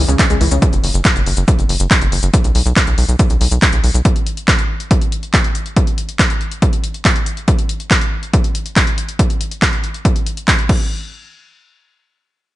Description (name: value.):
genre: uplifting trance.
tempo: 140 BPM.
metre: 4/4.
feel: straight.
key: unclear.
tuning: A4 = 440 Hz.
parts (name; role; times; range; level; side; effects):
tight sequencer bass; bass; 0.0-4.0 s; F#1 to C#2; -15 LUFS; equal; sidechain pumping.
downlifter; sound effects; 0.0-0.6 s; none; -38 LUFS; right 1 dB; none.
analog pluck; arpeggios; 0.1-0.5 s; C#3 to C#4; -21 LUFS; left 2 dB; wide subtle chorus, sidechain pumping, dub echo.
punchy analog drum machine; drums; 0.1-10.8 s; crash cymbal, handclaps, hi-hat; -18 LUFS; equal; none.
cabasa; percussion; 0.1-4.0 s; none; -27 LUFS; left 4 dB; none.
electronic kick drum; drums; 0.2-10.8 s; none; -14 LUFS; equal; overdrive.
room: little or no reverb.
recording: nothing above 10.7 kHz.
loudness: -13 LUFS.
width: side -16 dB against mid.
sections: 0.0-10.9 A section; 10.9-12.6 B section.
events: none.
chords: 0.0 C#m; 0.6 N.C..